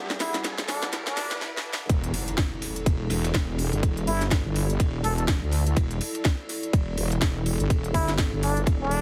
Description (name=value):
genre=bass house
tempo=124 BPM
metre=4/4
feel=swing 58% on 16ths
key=E minor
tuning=A4 = 438 Hz
part: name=dark analog pad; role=sustained chords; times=0.0-9.0 s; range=G3 to F#4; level=-57 LUFS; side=equal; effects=none
part: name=wobble bass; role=bass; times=0.0-9.0 s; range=E1 to E2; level=-29 LUFS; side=equal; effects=chorus, tube saturation, sidechain pumping, high-pass filter
part: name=riser, swell and impact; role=sound effects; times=0.0-3.8 s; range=none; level=-39 LUFS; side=equal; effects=none
part: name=warbly tape-like pad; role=texture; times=0.0-9.0 s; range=E4 to F#5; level=-38 LUFS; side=equal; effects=chorus, built-in reverb, sidechain pumping
part: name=house drum kit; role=drums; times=0.1-9.0 s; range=hi-hat, snare drum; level=-33 LUFS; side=equal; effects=none
part: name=trumpet with plunger mute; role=melody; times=0.2-9.0 s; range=D4 to A4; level=-33 LUFS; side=equal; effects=delay
part: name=cloth-damped thuddy drum kit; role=drums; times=0.2-9.0 s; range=ride cymbal, snare drum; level=-44 LUFS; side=equal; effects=high-pass filter on cymbals, high-pass filter on snare, high-pass filter on room
part: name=orchestra-hit-like synth stab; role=stabs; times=0.3-1.4 s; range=G3 to B4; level=-43 LUFS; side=equal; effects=none
part: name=electronic kick drum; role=drums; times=1.9-8.8 s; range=none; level=-25 LUFS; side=equal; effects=none
room=light reverb, small room ambience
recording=heavily compressed radio sound, multiband compression, high-pass filter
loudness=-26 LUFS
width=mono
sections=0.0-1.9 A section; 1.9-9.0 B section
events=build-up 0.0-1.9; drum fill 0.0-1.4, 1.4-1.9; riser 0.0-1.4; swell 0.9-1.9; drop 1.9-9.0; impact 1.9-3.8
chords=0.0 Emadd9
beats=0.44 0.93 1.41 | 1.90 2.38 2.86 3.35 | 3.83 4.32 4.80 5.28 | 5.77 6.25 6.73 7.22 | 7.70 8.19 8.67